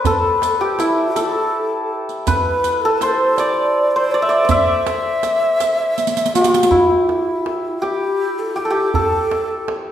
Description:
Persian modal ensemble; 54 BPM (dotted quarters); 6/8; straight; E dastgah shur; A4 = 440 Hz
santur; melody; 0.0-9.9 s; E4 to E5; -17 LUFS; left 1 dB
breathy bright low ney; second line; 0.0-9.7 s; E4 to E5; -20 LUFS; equal
tombak; percussion; 0.0-9.9 s; -24 LUFS; right 3 dB
riq; percussion; 0.1-6.7 s; -27 LUFS; right 6 dB
wet recital hall reverb, RT60 1.3 s; recorded in a church or concert hall; -15 LUFS; side -10 dB against mid
0.0-6.7 A section; 6.7-9.9 B section
drum fill 6.0-6.7
| 0.05 1.16 | 2.27 3.38 | 4.50 5.61 | 6.72 7.83 | 8.94

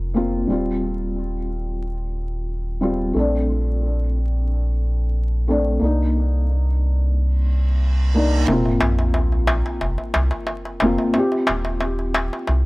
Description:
trip hop; 90 BPM; 4/4; swing 53% on 16ths; A4 = 439 Hz
felt-muted upright piano; accompaniment; 0.0-12.7 s; G3 to G4; -23 LUFS; left 1 dB; harmonic tremolo, tape echo
round analog bass; bass; 0.0-12.7 s; Eb1 to C2; -20 LUFS; equal
reverse cymbal and sub drop; sound effects; 7.5-11.1 s; -28 LUFS; equal
darbuka; percussion; 8.5-12.6 s; -24 LUFS; equal
little or no reverb; dry, gritty hardware recording, vinyl crackle; -18 LUFS; side -23 dB against mid
0.0-8.5 A section; 8.5-12.7 B section
reverse cymbal 7.5-8.5; impact 8.5-11.1
0.5 Eb6; 3.1 Bbmaj7; 5.8 Cm7; 8.5 Fsus4; 11.1 Eb6
| 0.48 1.15 1.81 2.48 | 3.15 3.81 4.48 5.15 | 5.81 6.48 7.15 7.81 | 8.48 9.15 9.81 10.48 | 11.15 11.81 12.48

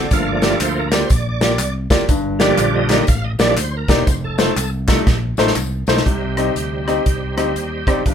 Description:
uptempo gospel; 121 BPM; 4/4; swing 63% on 8ths; A4 = 440 Hz
clear baby grand piano; accompaniment; 0.0-8.1 s; G2 to Eb5; -19 LUFS; left 2 dB
bright tonewheel organ; sustained chords; 0.0-8.1 s; D3 to F5; -22 LUFS; right 3 dB; fast rotary speaker, overdrive, chorus vibrato
fingered electric bass; bass; 0.0-8.1 s; E1 to Eb2; -23 LUFS; equal
natural country drum kit; drums; 0.1-8.1 s; hi-hat, kick drum, rim click, snare drum; -18 LUFS; equal
tambourine and handclaps; percussion; 0.1-6.0 s; -29 LUFS; left 3 dB
light reverb; band playing live in one room; -15 LUFS; side -8 dB against mid
0.0-6.1 A section; 6.1-8.1 B section
tonewheel organ solo 0.0-6.1; drum fill 5.1-6.1
0.1 Gm7; 2.1 Ebmaj7/G; 4.1 F7; 6.1 Cm
| 0.11 0.61 1.10 1.60 | 2.09 2.59 3.08 3.58 | 4.07 4.57 5.07 5.56 | 6.06 6.56 7.06 7.56 | 8.06

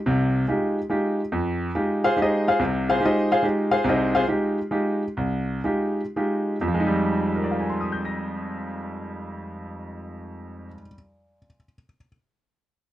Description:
jazz; 100-143 BPM; 3/4; swing 66% on 8ths; F dorian; A4 = 440 Hz
bright baby grand piano; solo; 0.1-12.1 s; C2 to Bb6; -22 LUFS; equal
little or no reverb; dry, close 1970s-style studio recording; -21 LUFS; side -13 dB against mid
0.0-1.3 A section; 1.3-6.7 B section; 6.7-10.3 C section
slowing down 3.9-6.7
0.0 Fm9
| 0.07 0.49 0.91 | 1.33 1.75 2.17 | 2.59 3.01 3.43 | 3.85 4.27 4.71 | 5.16 5.64 6.16 | 6.73 7.33 7.93 | 8.53 9.13 9.73

